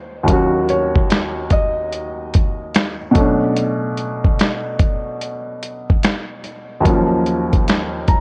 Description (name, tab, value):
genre	lo-fi hip hop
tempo	73 BPM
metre	4/4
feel	swing 63% on 16ths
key	unclear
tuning	A4 = 439 Hz
part	warm upright piano	accompaniment	0.0-8.2 s	Eb2 to Bb5	-21 LUFS	equal	low-pass filter
part	dusty soul sampler-style drum kit	drums	0.3-8.2 s	finger snaps, hi-hat, kick drum, snare drum	-19 LUFS	equal	overdrive, vintage 12-bit sampler grit
part	felt-muted upright piano	melody	0.7-3.0 s	Db5 to Eb5	-26 LUFS	equal	low-pass filter, tape echo
room	light reverb, studio ambience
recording	worn, warbling old tape, cassette tape, warbly pitch drift, lossy compression artefacts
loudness	-18 LUFS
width	mono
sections	0.0-8.2 A section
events	none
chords	0.0 Ebm9; 3.2 Bm9; 6.9 Ebm9